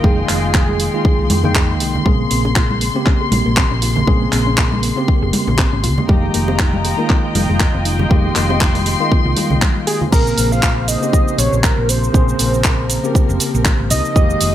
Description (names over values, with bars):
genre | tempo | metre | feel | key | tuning
nu-disco, nu disco | 119 BPM | 4/4 | swing 56% on 16ths | Bb dorian | A4 = 439 Hz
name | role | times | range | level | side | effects
wide unison lead | melody | 0.0-1.8, 9.9-14.5 s | Ab4 to F5 | -21 LUFS | right 1 dB | tape echo
bell-like tine electric piano | accompaniment | 0.0-14.5 s | Db3 to G5 | -21 LUFS | equal | medium stereo tremolo, slapback echo
dark studio string section | sustained chords | 0.0-14.5 s | F3 to C6 | -23 LUFS | left 4 dB | sidechain pumping
hollow-body short-scale fingered electric bass | bass | 0.0-14.5 s | F1 to F2 | -19 LUFS | equal | sidechain pumping
electronic kick drum | drums | 0.0-14.3 s | none | -15 LUFS | equal | none
congas and bongos | percussion | 0.0-10.1 s | none | -24 LUFS | right 2 dB | none
house drum kit | drums | 0.3-14.5 s | crash cymbal, handclaps, hi-hat, shaker | -20 LUFS | right 1 dB | none
soft round pluck | arpeggios | 2.1-10.1 s | G3 to Ab4 | -26 LUFS | left 4 dB | chorus, sidechain pumping, tape echo
room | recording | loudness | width
digital ambience | none | -13 LUFS | side -12 dB against mid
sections
0.0-10.1 A section; 10.1-14.5 B section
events
drop 10.1-14.5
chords
0.0 Fm11; 2.1 Bbm9; 6.1 Fm11; 10.1 Bbm9